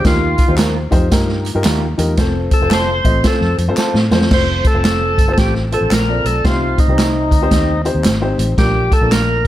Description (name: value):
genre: uptempo 1960s-style soul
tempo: 112 BPM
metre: 4/4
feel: swing 63% on 8ths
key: F mixolydian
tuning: A4 = 438 Hz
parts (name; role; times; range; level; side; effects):
- overdriven tonewheel organ; melody; 0.0-9.5 s; Eb4 to C5; -19 LUFS; equal; slow rotary speaker, slapback echo
- dark upright piano; accompaniment; 0.0-9.4 s; Bb2 to Eb5; -21 LUFS; left 2 dB; none
- vintage muted fingered electric bass; bass; 0.0-9.4 s; F1 to A2; -18 LUFS; equal; none
- vintage drum kit; drums; 0.0-9.5 s; crash cymbal, hi-hat, kick drum, snare drum; -16 LUFS; equal; none
- tambourine and handclaps; percussion; 0.0-9.3 s; none; -30 LUFS; equal; none
- congas; percussion; 0.4-9.5 s; none; -32 LUFS; right 1 dB; none
- electric guitar through a small old amp; stabs; 0.6-3.9 s; G3 to Bb4; -25 LUFS; right 5 dB; warbly pitch drift
room: studio reverb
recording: none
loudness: -12 LUFS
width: side -13 dB against mid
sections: 0.0-4.3 A section; 4.3-9.5 B section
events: tonewheel organ solo 0.0-4.3; drum fill 3.8-4.3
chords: 0.0 Ebadd9; 2.2 F; 6.4 Cm; 8.6 Bb